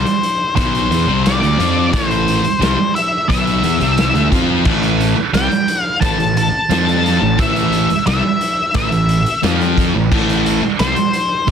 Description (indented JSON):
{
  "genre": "quiet-loud alternative rock",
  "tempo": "88 BPM",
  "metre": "4/4",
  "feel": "straight",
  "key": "A minor",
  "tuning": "A4 = 440 Hz",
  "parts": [
    { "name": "octave-fuzz lead guitar", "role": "melody", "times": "0.0-11.5 s", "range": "C5 to A5", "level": "-18 LUFS", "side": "left 2 dB", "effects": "distortion, slapback echo" },
    { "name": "sludgy distorted guitar", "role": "riff", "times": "0.0-11.5 s", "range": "A2 to F4", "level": "-19 LUFS", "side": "left 14 dB", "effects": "overdrive" },
    { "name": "thick fuzz guitar", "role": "riff", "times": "0.0-11.5 s", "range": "A2 to F4", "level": "-19 LUFS", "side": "right 14 dB", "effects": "distortion" },
    { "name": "fuzz picked electric bass", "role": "bass", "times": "0.0-11.5 s", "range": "A1 to F2", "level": "-20 LUFS", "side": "equal", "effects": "overdrive" },
    { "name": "raw garage drum kit", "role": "drums", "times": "0.1-11.5 s", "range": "crash cymbal, hi-hat, kick drum, snare drum", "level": "-20 LUFS", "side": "equal", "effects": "none" }
  ],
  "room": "light reverb",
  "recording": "dense, heavily limited modern master",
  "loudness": "-13 LUFS",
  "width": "side -7 dB against mid",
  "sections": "0.0-11.5 A section",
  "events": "none",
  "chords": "0.0 Am"
}